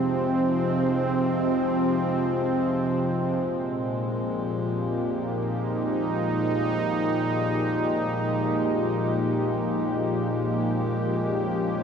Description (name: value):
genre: ambient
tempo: free time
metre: none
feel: none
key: unclear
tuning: A4 = 440 Hz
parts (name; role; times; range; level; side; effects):
- warm analog pad; sustained chords; 0.0-11.8 s; Bb2 to G4; -23 LUFS; equal; chorus
- pedal harmonium; drone; 0.0-11.8 s; Ab3; -34 LUFS; left 1 dB; none
room: wet huge ambient reverb, RT60 8.1 s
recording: in a vast, echoing space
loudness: -23 LUFS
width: side -7 dB against mid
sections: 0.0-11.8 A section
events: fade-in on harmonium 0.0-11.8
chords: 0.0 Ab6; 3.4 Ebadd9